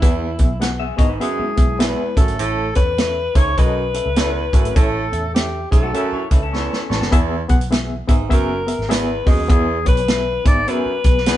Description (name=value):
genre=uptempo 1960s-style soul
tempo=101 BPM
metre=4/4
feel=swing 62% on 8ths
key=E major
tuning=A4 = 440 Hz
part: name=warm alto saxophone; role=melody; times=0.0-11.4 s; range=E4 to D5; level=-22 LUFS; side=left 2 dB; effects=none
part: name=barky reed electric piano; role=accompaniment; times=0.0-11.4 s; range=A2 to E6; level=-25 LUFS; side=left 2 dB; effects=overdrive, fast tremolo
part: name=warm baritone saxophone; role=riff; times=0.0-11.4 s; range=E2 to A2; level=-26 LUFS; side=right 6 dB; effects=none
part: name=vintage muted picked electric bass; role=bass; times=0.0-11.4 s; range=F#1 to E2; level=-25 LUFS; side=equal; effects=none
part: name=vintage drum kit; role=drums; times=0.0-11.4 s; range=hi-hat, kick drum, snare drum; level=-16 LUFS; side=equal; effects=none
part: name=electric guitar through a small old amp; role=riff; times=0.8-2.1, 5.8-7.1 s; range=G#3 to E5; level=-28 LUFS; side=left 6 dB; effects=none
room=light reverb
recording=band playing live in one room, nothing above 10.7 kHz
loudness=-15 LUFS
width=side -13 dB against mid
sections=0.0-11.4 A section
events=alto saxophone solo 0.0-11.4; drum fill 6.5-7.1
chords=0.0 E; 2.1 A